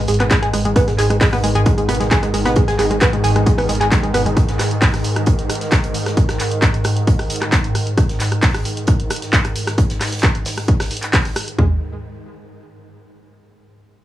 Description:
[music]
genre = driving peak-time techno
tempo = 133 BPM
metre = 4/4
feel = straight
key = unclear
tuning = A4 = 440 Hz
[part]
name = analog pluck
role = riff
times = 0.0-4.3, 11.6-11.8 s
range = G#3 to G#4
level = -19 LUFS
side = right 1 dB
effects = chorus, overdrive, sidechain pumping, tape echo
[part]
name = swarming drone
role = drone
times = 0.0-11.6 s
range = G#2 to D#3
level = -22 LUFS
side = equal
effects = built-in reverb, sidechain pumping
[part]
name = saturated sub bass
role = bass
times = 0.1-4.4 s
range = G#1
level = -22 LUFS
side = equal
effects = tube saturation, sidechain pumping, low-pass filter
[part]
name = punchy analog drum machine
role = drums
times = 0.1-11.6 s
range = handclaps, hi-hat, rim click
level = -22 LUFS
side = equal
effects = none
[part]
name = warm soul drum kit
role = drums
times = 0.1-11.5 s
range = hi-hat, snare drum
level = -32 LUFS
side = right 2 dB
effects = sidechain pumping on hats, high-pass filter on hats, high-pass filter on snare, high-pass filter on room
[part]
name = techno drum kit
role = drums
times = 0.3-11.7 s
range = kick drum, toms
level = -16 LUFS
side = equal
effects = overdrive
[sound]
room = little or no reverb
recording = small room ambience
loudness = -14 LUFS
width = side -14 dB against mid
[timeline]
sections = 0.0-11.6 A section; 11.6-13.4 B section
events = none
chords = 0.0 G#5; 11.6 N.C.

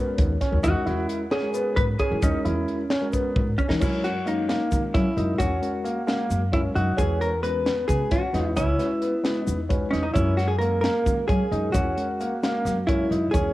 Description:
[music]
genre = progressive instrumental, band music in an uneven meter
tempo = 264 BPM (eighths)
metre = 7/8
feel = straight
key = F# mixolydian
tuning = A4 = 443 Hz
[part]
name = mellow tine electric piano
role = accompaniment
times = 0.0-13.5 s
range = G#3 to C#5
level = -31 LUFS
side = left 2 dB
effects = fast stereo tremolo, cassette tape
[part]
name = warm grand piano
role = arpeggios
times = 0.0-13.5 s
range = A#3 to E4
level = -29 LUFS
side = right 1 dB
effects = cassette tape
[part]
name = upright bass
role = bass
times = 0.2-13.5 s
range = C#2 to F#3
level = -26 LUFS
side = equal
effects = none
[part]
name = crisp fusion drum kit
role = drums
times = 0.2-13.4 s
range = crash cymbal, hi-hat, kick drum, snare drum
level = -27 LUFS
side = equal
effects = cassette tape
[part]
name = tube shaker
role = percussion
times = 0.2-13.5 s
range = none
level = -45 LUFS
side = left 5 dB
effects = none
[part]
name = vintage hollow-body jazz guitar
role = melody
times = 0.6-13.5 s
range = C#4 to B4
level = -26 LUFS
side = equal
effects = tape echo
[sound]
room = light reverb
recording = home recording on cassette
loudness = -21 LUFS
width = side -16 dB against mid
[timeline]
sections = 0.0-3.8 A section; 3.8-13.5 B section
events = tine electric piano fill 0.0-0.6; drum fill 3.4-3.8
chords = 0.0 Bmaj9/D#; 0.6 E69; 3.8 F#7; 7.0 E6; 10.2 F#7

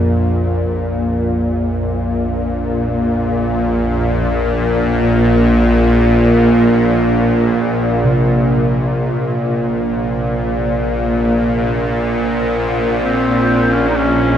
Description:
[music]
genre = dark ambient drone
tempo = free time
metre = none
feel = none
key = unclear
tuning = A4 = 440 Hz
[part]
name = gamelan-type bossed gongs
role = arpeggios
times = 0.0-13.8 s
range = F2 to C3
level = -22 LUFS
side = equal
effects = tape echo
[part]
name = bowed-like drone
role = drone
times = 0.0-14.4 s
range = Bb1 to Bb2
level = -14 LUFS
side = equal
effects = built-in reverb
[part]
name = warm duduk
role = melody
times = 13.0-14.4 s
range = C4 to Eb4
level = -16 LUFS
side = equal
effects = none
[sound]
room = moderate plate reverb, RT60 2.3 s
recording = echo-heavy mix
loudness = -13 LUFS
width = side -9 dB against mid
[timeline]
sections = 0.0-14.4 A section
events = none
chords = 0.0 Bbsus2; 12.1 N.C.

